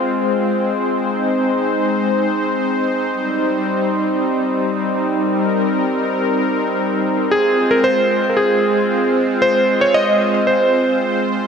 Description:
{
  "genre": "synthwave",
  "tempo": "114 BPM",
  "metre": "4/4",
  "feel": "straight",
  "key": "F minor",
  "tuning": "A4 = 438 Hz",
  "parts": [
    { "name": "warm analog pad", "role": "sustained chords", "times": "0.0-11.5 s", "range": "G3 to C5", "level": "-17 LUFS", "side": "equal", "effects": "chorus, tremolo" },
    { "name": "warm electric grand piano", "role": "melody", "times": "7.3-11.2 s", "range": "Ab4 to Eb5", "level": "-15 LUFS", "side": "equal", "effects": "ping-pong delay" }
  ],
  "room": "wet plate reverb, RT60 2.5 s",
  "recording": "bright 1980s-style digital production",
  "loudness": "-15 LUFS",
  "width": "side -6 dB against mid",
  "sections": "0.0-11.5 A section",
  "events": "none",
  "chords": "0.0 Fm; 3.1 Cm; 7.3 Fm"
}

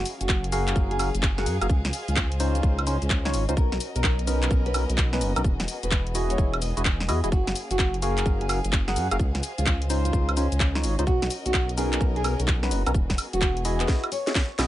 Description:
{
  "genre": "UK garage, two-step garage",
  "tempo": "128 BPM",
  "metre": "4/4",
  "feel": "swing 65% on 16ths",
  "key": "F# major",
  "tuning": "A4 = 440 Hz",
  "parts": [
    { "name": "nylon-string guitar", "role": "melody", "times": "0.0-14.7 s", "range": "C#4 to D#5", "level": "-32 LUFS", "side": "equal", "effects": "digital delay" },
    { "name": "warm studio violin section", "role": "sustained chords", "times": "0.0-14.7 s", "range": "A#3 to E#5", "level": "-38 LUFS", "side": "equal", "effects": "sidechain pumping" },
    { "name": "dark detuned saw bass", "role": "bass", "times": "0.0-14.7 s", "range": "E1 to F#2", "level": "-26 LUFS", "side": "equal", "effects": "sidechain pumping" },
    { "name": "garage drum kit", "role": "drums", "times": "0.1-14.7 s", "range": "handclaps, hi-hat, shaker, snare drum, woodblock", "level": "-28 LUFS", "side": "equal", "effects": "none" },
    { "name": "electronic kick drum", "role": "drums", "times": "0.3-14.5 s", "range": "none", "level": "-24 LUFS", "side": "equal", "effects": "none" },
    { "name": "percussive organ stab", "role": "stabs", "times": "0.5-14.7 s", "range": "B3 to F#5", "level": "-30 LUFS", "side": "equal", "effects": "chorus, digital delay" }
  ],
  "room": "light reverb",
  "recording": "nothing above 10.8 kHz",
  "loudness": "-22 LUFS",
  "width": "side -14 dB against mid",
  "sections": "0.0-14.7 A section",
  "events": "drum fill 13.9-14.7",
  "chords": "0.0 F#maj9; 1.7 C#maj9; 3.6 Bmaj9; 5.4 Emaj9; 7.3 F#maj9; 9.2 C#maj9; 11.1 Bmaj9; 12.9 Emaj9"
}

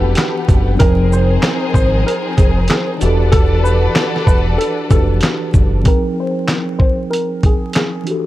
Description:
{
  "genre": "hip hop, boom-bap hip-hop",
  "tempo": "95 BPM",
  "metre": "4/4",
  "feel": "swing 62% on 16ths",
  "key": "unclear",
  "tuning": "A4 = 443 Hz",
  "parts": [
    { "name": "warm upright piano", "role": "melody", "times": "0.0-8.0 s", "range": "Ab4 to C5", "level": "-22 LUFS", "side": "equal", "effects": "high-pass filter, low-pass filter, ping-pong delay" },
    { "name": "mellow tine electric piano", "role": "accompaniment", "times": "0.0-8.3 s", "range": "E3 to G5", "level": "-20 LUFS", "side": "equal", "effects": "medium stereo tremolo, high-pass filter, low-pass filter" },
    { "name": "dark studio string section", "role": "sustained chords", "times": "0.0-5.8 s", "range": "E3 to F#5", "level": "-26 LUFS", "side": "right 1 dB", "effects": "high-pass filter, low-pass filter" },
    { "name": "warm studio string section", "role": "stabs", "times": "0.0-5.8 s", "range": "B3 to D5", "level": "-23 LUFS", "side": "left 4 dB", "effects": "high-pass filter, low-pass filter, ping-pong delay" },
    { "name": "deep dub fingered electric bass", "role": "bass", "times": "0.0-5.8 s", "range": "E1 to Ab1", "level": "-15 LUFS", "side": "equal", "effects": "none" },
    { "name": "dusty soul sampler-style drum kit", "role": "drums", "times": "0.2-8.2 s", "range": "handclaps, hi-hat, kick drum, shaker, snare drum", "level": "-14 LUFS", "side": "equal", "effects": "none" }
  ],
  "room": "small room ambience",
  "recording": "dark, warm production, vinyl crackle",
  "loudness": "-12 LUFS",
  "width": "side -15 dB against mid",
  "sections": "0.0-5.9 A section; 5.9-8.3 B section",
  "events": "filter sweep 5.9-8.3",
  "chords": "0.0 Em11; 0.8 Fm11; 3.0 Em11; 5.9 Fm11"
}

